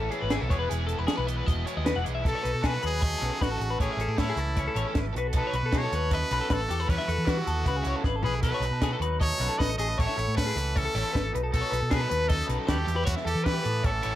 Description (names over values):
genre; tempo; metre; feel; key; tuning
math rock and midwest emo; 155 BPM; 4/4; straight; unclear; A4 = 440 Hz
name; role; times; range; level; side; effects
twangy electric guitar; accompaniment; 0.0-14.2 s; E2 to G#4; -37 LUFS; right 5 dB; none
twelve-string electric guitar; arpeggios; 0.0-14.2 s; G4 to F#5; -32 LUFS; left 5 dB; none
biting overdriven guitar; riff; 0.0-14.2 s; A2 to A4; -37 LUFS; left 1 dB; none
picked electric bass; bass; 0.0-14.1 s; E1 to E3; -30 LUFS; equal; none
compact cocktail drum kit; drums; 0.1-14.1 s; hi-hat, kick drum, snare drum, toms; -29 LUFS; equal; none
brilliant trumpet; melody; 2.3-14.2 s; E4 to D#5; -31 LUFS; equal; slapback echo
room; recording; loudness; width
light reverb; none; -25 LUFS; side -13 dB against mid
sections
0.0-2.2 A section; 2.2-14.2 B section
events
drum fill 8.1-8.4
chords
0.0 Amaj7; 0.5 Emaj7; 2.2 B7; 3.8 Amaj7; 5.2 B7; 6.7 Emadd9; 7.7 C#m7; 8.4 B7; 10.0 Amaj7; 11.3 B7; 12.9 Em